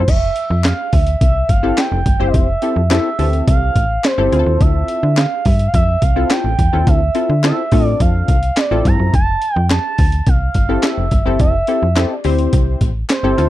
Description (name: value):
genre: early-eighties boogie funk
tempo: 106 BPM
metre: 4/4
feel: straight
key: unclear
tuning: A4 = 440 Hz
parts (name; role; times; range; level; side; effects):
- expressive portamento lead; melody; 0.0-13.5 s; C5 to Bb5; -20 LUFS; right 3 dB; chorus, slapback echo
- funky polysynth comp; accompaniment; 0.0-13.5 s; E3 to C5; -19 LUFS; left 4 dB; chorus
- slap-like FM bass; bass; 0.0-13.5 s; F1 to D3; -16 LUFS; equal; none
- breakbeat sampler-style drum kit; drums; 0.1-13.5 s; crash cymbal, handclaps, hi-hat, kick drum, snare drum; -16 LUFS; equal; none
- group handclap; percussion; 0.6-13.2 s; none; -27 LUFS; left 12 dB; none
room: little or no reverb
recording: dry, close 1970s-style studio recording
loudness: -13 LUFS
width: side -15 dB against mid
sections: 0.1-13.5 A section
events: none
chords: 0.1 Fmaj9; 4.3 Dm9; 9.1 Fmaj9